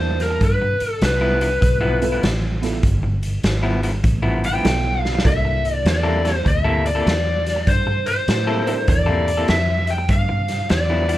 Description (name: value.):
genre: electric blues shuffle.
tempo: 99 BPM.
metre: 4/4.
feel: swing 65% on 8ths.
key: G mixolydian.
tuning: A4 = 440 Hz.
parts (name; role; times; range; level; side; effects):
lead guitar through a small cranked amp; melody; 0.0-11.2 s; Bb4 to G5; -21 LUFS; left 1 dB; overdrive.
dark upright piano; accompaniment; 0.0-9.5 s; Bb3 to A5; -29 LUFS; right 7 dB; none.
vintage muted fingered electric bass; bass; 0.0-11.2 s; G1 to A2; -21 LUFS; equal; none.
raw garage drum kit; drums; 0.2-11.2 s; hi-hat, kick drum, snare drum; -22 LUFS; equal; none.
electric guitar through a small old amp; riff; 0.3-11.2 s; G2 to A4; -24 LUFS; left 1 dB; tremolo.
room: little or no reverb.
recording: none.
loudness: -16 LUFS.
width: side -14 dB against mid.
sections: 0.0-11.2 A section.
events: drum fill 4.9-5.3.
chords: 0.4 G13; 5.3 C13; 10.1 G13.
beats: | 0.42 1.02 1.62 2.23 | 2.83 3.44 4.04 4.65 | 5.25 5.86 6.46 7.07 | 7.67 8.28 8.88 9.49 | 10.10 10.70.